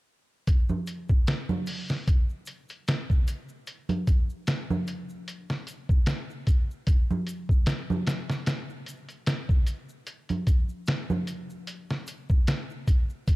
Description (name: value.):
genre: trip hop.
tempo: 75 BPM.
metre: 4/4.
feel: swing 55% on 16ths.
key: none.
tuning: none.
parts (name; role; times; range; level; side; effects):
trip hop sampler-style drum kit; drums; 0.5-13.4 s; hi-hat, kick drum, snare drum; -24 LUFS; equal; none.
egg shaker and congas; percussion; 0.5-13.4 s; none; -31 LUFS; right 2 dB; none.
room: little or no reverb.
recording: dark, warm production.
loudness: -25 LUFS.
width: side -20 dB against mid.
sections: 0.5-13.4 A section.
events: none.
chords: none.